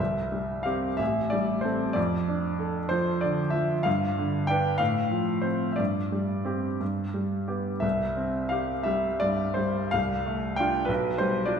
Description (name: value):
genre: classical, romantic character piece for solo piano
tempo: 54-66 BPM (dotted quarters)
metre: 6/8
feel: rubato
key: C major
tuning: A4 = 441 Hz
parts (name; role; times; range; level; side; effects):
- clear grand piano; solo; 0.0-11.6 s; A1 to G5; -25 LUFS; equal; none
room: wet recital hall reverb, RT60 1.8 s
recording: heard from further back in the room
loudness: -25 LUFS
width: side -7 dB against mid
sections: 0.0-11.6 A section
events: none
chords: 0.0 C; 1.0 Am7; 2.0 Dm/F; 3.9 G; 4.8 F/A; 5.8 Gsus4; 6.8 G; 7.8 C; 9.9 Dm7/C; 10.9 G7/B